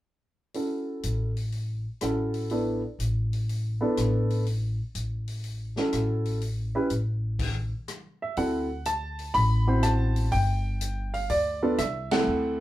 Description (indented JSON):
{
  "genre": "jazz piano trio",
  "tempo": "123 BPM",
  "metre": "4/4",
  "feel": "swing 67% on 8ths",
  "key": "D mixolydian from 8.4 s",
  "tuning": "A4 = 440 Hz",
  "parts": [
    { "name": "warm upright piano", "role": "melody", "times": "0.5-12.6 s", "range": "A3 to B5", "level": "-27 LUFS", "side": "right 1 dB", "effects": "none" },
    { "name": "open jazz drum kit", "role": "drums", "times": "0.5-12.2 s", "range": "crash cymbal, hi-hat, kick drum, ride cymbal, rim click, snare drum", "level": "-36 LUFS", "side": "left 2 dB", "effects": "none" },
    { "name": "upright bass", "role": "bass", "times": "1.0-12.6 s", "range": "G1 to D2", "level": "-28 LUFS", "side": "equal", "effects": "none" }
  ],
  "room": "moderate studio reverb, RT60 0.5 s",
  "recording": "band playing live in one room",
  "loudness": "-25 LUFS",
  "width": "side -15 dB against mid",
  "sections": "0.5-8.4 A section; 8.4-12.6 B section",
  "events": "stop 7.4-8.4; band accent 12.0",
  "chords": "0.5 A6; 8.4 D7; 10.3 G5"
}